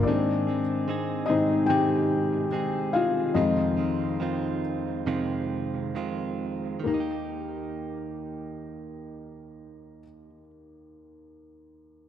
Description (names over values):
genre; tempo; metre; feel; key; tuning
pop; 66-74 BPM; 4/4; straight; Eb major; A4 = 440 Hz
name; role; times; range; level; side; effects
felt-muted upright piano; accompaniment; 0.0-12.1 s; Eb2 to G5; -26 LUFS; left 3 dB; none
direct-recorded clean electric guitar; arpeggios; 0.0-10.5 s; F2 to Ab4; -32 LUFS; right 6 dB; analog delay
room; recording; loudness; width
moderate echo chamber reverb, RT60 1.7 s, small room ambience; dark, warm production; -25 LUFS; side -10 dB against mid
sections
0.1-6.9 A section; 6.9-10.5 B section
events
slowing down 0.1-6.9; felt piano solo 0.1-6.9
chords
0.1 Ab; 3.4 Fm7; 6.9 Eb